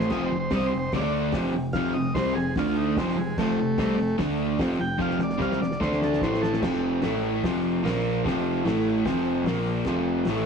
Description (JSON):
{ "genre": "garage rock duo or trio", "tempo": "148 BPM", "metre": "4/4", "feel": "straight", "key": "F mixolydian, F major from 6.6 s", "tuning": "A4 = 440 Hz", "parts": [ { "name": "overdriven combo organ", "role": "melody", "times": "0.0-6.6 s", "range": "Ab3 to G5", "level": "-29 LUFS", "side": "equal", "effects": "spring reverb" }, { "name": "overdriven electric guitar", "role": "riff", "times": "0.0-10.5 s", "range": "F2 to D4", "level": "-24 LUFS", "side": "equal", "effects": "none" }, { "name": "growling picked electric bass", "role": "bass", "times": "0.0-10.5 s", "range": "F1 to D2", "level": "-33 LUFS", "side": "equal", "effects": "overdrive" }, { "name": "cloth-damped thuddy drum kit", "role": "drums", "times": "0.0-10.4 s", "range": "crash cymbal, hi-hat, kick drum, snare drum", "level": "-32 LUFS", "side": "equal", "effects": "none" } ], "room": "wet small room reverb, RT60 0.6 s", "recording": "rough rehearsal-room recording", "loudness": "-23 LUFS", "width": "side -6 dB against mid", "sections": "0.0-6.6 A section; 6.6-10.5 B section", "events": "transistor combo organ solo 0.0-6.6; drum fill 5.0-6.6", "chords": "0.1 F5; 0.9 D5; 1.3 F5; 2.6 D5; 3.0 F; 4.2 D5; 4.6 F5; 5.8 D5; 6.2 A5; 6.6 F5; 7.0 A5; 7.4 F5; 7.8 Bb5; 8.2 F5; 8.6 A5; 9.1 F5; 9.5 Bb5; 9.9 F5" }